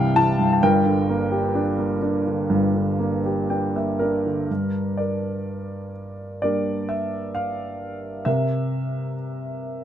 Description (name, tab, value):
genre	classical, lyrical solo piano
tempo	57-67 BPM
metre	4/4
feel	rubato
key	G dorian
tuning	A4 = 442 Hz
part	dark baby grand piano	solo	0.0-9.8 s	G1 to A5	-21 LUFS	equal	none
room	light reverb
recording	close, detailed microphones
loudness	-21 LUFS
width	side -10 dB against mid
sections	0.0-4.5 A section; 4.5-9.8 B section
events	grand piano fill 3.0-4.5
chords	0.0 Cadd9; 0.6 Gm; 8.3 C7